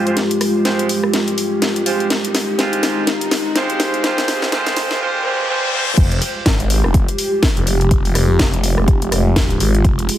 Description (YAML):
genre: bass house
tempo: 124 BPM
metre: 4/4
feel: swing 59% on 16ths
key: F minor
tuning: A4 = 440 Hz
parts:
  - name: dark analog pad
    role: sustained chords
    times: 0.0-10.2 s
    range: Ab3 to Ab4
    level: -20 LUFS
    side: equal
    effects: chorus, sidechain pumping
  - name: clear horn section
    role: stabs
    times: 0.0-6.0 s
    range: Ab3 to C5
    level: -22 LUFS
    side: right 2 dB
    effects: sidechain pumping, low-pass filter, dub echo
  - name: riser and reverse cymbal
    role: sound effects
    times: 1.3-6.0 s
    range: none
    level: -27 LUFS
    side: left 3 dB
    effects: none
  - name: house drum kit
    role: drums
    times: 0.1-10.2 s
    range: crash cymbal, hi-hat, rim click, snare drum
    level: -20 LUFS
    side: left 1 dB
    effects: studio reverb
  - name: phased detuned saw bass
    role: bass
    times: 6.0-10.1 s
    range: F1 to Ab1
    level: -16 LUFS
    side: equal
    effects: phaser, overdrive, sidechain pumping
  - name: electronic kick drum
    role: drums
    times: 6.0-10.0 s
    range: none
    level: -16 LUFS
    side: equal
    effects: studio reverb
room: light reverb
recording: heavily compressed radio sound, multiband compression, high-pass filter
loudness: -14 LUFS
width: side -12 dB against mid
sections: 0.0-6.0 A section; 6.0-10.2 B section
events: build-up 0.0-6.0; drum fill 0.0-5.0; filter sweep 0.0-6.0; riser 1.3-6.0; reverse cymbal 5.0-6.0; drop 6.0-10.2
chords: 0.0 Fmadd9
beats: | 0.17 0.65 1.14 1.62 | 2.10 2.59 3.07 3.56 | 4.04 4.52 5.01 5.49 | 5.97 6.46 6.94 7.43 | 7.91 8.39 8.88 9.36 | 9.85